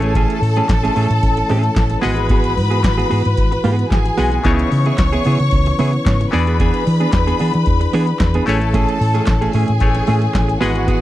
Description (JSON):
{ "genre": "disco", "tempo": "112 BPM", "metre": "4/4", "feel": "straight", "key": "unclear", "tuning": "A4 = 440 Hz", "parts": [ { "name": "clear studio string section", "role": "second line", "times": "0.0-11.0 s", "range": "F#4 to C#6", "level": "-21 LUFS", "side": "left 2 dB", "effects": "none" }, { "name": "bright clav", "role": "accompaniment", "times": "0.0-11.0 s", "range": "C#3 to F#5", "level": "-27 LUFS", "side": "left 5 dB", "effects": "none" }, { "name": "semi-hollow electric guitar", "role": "accompaniment", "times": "0.0-11.0 s", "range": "A3 to G#4", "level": "-20 LUFS", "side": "right 5 dB", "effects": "none" }, { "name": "percussive tonewheel organ", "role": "sustained chords", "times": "0.0-11.0 s", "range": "C#3 to B4", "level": "-24 LUFS", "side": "left 1 dB", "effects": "chorus vibrato, slow rotary speaker" }, { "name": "hollow-body short-scale fingered electric bass", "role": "bass", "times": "0.0-11.0 s", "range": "G#1 to E3", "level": "-18 LUFS", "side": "equal", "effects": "none" }, { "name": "electro analog drum machine", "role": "drums", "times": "0.0-11.0 s", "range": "handclaps, hi-hat, kick drum, snare drum", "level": "-18 LUFS", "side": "equal", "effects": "none" } ], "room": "little or no reverb", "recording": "dry, close 1970s-style studio recording", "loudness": "-13 LUFS", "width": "side -14 dB against mid", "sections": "0.0-11.0 A section", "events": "none", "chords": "0.0 Amaj7; 2.0 G#m7; 4.4 C#m7; 6.3 E7; 8.5 Amaj7" }